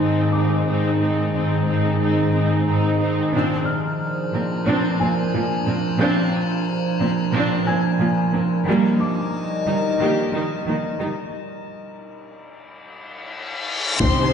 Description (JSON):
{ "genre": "cinematic, hybrid orchestral and electronic film score", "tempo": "90 BPM", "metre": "4/4", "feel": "straight", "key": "unclear", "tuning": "A4 = 438 Hz", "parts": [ { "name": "rich symphonic viola section", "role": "accompaniment", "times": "0.0-14.3 s", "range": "Eb3 to G4", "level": "-24 LUFS", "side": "right 2 dB", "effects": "none" }, { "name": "metallic inharmonic drone", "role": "sustained chords", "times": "0.0-14.3 s", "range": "Eb3 to Eb5", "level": "-22 LUFS", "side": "equal", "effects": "chorus, built-in reverb, phaser" }, { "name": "rich symphonic cello section", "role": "bass", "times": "0.0-14.3 s", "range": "Ab2 to Eb3", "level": "-25 LUFS", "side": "right 1 dB", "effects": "none" }, { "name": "felt-muted upright piano", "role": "texture", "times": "0.3-14.0 s", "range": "F5 to Ab6", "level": "-31 LUFS", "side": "left 4 dB", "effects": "ping-pong delay" }, { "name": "reverse cymbal and impact", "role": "sound effects", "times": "12.9-14.3 s", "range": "none", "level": "-26 LUFS", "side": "left 3 dB", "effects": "none" }, { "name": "clear symphonic violin section", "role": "melody", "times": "14.0-14.3 s", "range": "C6", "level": "-23 LUFS", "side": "left 6 dB", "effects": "none" }, { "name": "rich symphonic violin section", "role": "second line", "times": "14.0-14.3 s", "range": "G4 to C5", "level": "-24 LUFS", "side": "left 4 dB", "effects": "none" }, { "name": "taiko ensemble", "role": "drums", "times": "14.0-14.3 s", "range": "none", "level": "-20 LUFS", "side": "left 1 dB", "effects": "none" } ], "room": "wet scoring stage reverb, RT60 1.7 s", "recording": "heard from further back in the room, nothing above 10.9 kHz", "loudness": "-18 LUFS", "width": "side -7 dB against mid", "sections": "0.0-14.0 A section", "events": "build-up 0.0-14.0; break 11.3-14.0; reverse cymbal 12.9-14.0; impact 14.0-14.3", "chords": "0.0 Ab; 3.3 Bbadd9; 8.7 Eb", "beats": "0.00 | 0.66 1.33 2.00 2.66 | 3.33 4.00 4.66 5.33 | 6.00 6.66 7.33 8.00 | 8.66 9.33 10.00 10.66 | 11.33 12.00 12.66 13.33 | 14.00" }